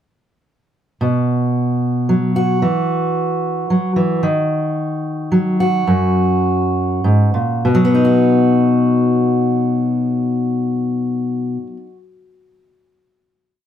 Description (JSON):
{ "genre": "acoustic folk duo or small band", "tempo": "95-112 BPM", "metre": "3/4", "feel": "straight", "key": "B major", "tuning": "A4 = 440 Hz", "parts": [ { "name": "fingerpicked steel-string acoustic guitar", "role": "solo", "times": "1.0-12.0 s", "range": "F#2 to F#4", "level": "-14 LUFS", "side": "equal", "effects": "none" } ], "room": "moderate small room reverb, RT60 0.5 s", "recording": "none", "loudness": "-14 LUFS", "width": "side -9 dB against mid", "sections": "1.0-7.7 interlude; 7.7-11.4 final chord", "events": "slowing down 4.2-7.7", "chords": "1.0 B5; 2.6 Esus2; 4.2 D#m; 5.9 F#; 7.7 B" }